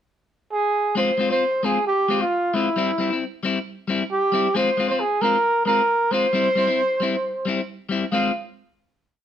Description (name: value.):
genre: highlife.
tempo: 134 BPM.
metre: 4/4.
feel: straight.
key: F harmonic minor.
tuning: A4 = 440 Hz.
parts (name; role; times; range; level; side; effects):
breathy trumpet; melody; 0.5-8.3 s; E4 to F5; -20 LUFS; right 1 dB; none.
electric guitar at the edge of break-up; accompaniment; 1.0-8.3 s; G3 to F4; -24 LUFS; left 5 dB; none.
room: light reverb.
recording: none.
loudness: -19 LUFS.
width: side -9 dB against mid.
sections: 0.0-1.0 pickup bar; 1.0-8.1 groove; 8.1-9.2 final chord.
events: none.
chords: 0.0 N.C.; 1.0 Fm; 2.8 C; 4.6 Fm; 6.3 C; 8.1 Fm.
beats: 0.06 0.51 | 0.96 1.41 1.86 2.31 | 2.76 3.21 3.66 4.10 | 4.55 5.00 5.44 5.89 | 6.34 6.78 7.23 7.67 | 8.12.